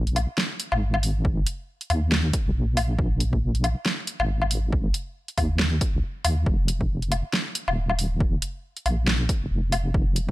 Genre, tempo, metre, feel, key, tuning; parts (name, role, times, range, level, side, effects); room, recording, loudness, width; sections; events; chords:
deep dubstep; 138 BPM; 4/4; swing 58% on 16ths, half-time; A4 = 442 Hz
deep soft wobble bass; bass; 0.0-10.3 s; Eb1 to Eb2; -24 LUFS; equal; chorus
deep house drum kit; drums; 0.1-10.3 s; hi-hat, snare drum, woodblock; -26 LUFS; left 1 dB; overdrive
electronic kick drum; drums; 1.2-10.3 s; -25 LUFS; equal; overdrive
little or no reverb; -22 LUFS; side -17 dB against mid
0.0-10.3 A section